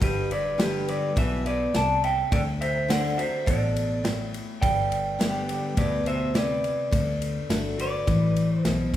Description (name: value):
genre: honky-tonk and classic country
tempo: 104 BPM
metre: 4/4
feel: straight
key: G major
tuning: A4 = 440 Hz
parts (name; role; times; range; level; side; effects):
- electric guitar through a small old amp; melody; 0.0-8.9 s; G4 to A5; -27 LUFS; equal; none
- picked steel-string acoustic guitar; accompaniment; 0.0-9.0 s; G2 to G4; -29 LUFS; left 2 dB; none
- vintage muted fingered electric bass; bass; 0.0-9.0 s; G1 to D2; -30 LUFS; equal; none
- natural country drum kit; drums; 0.0-9.0 s; kick drum, ride cymbal, snare drum; -29 LUFS; equal; none
room: wet recital hall reverb, RT60 1.5 s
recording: recorded in a church or concert hall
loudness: -23 LUFS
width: side -12 dB against mid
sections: 0.0-9.0 A section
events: none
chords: 0.0 G; 2.3 D; 4.6 G; 6.9 D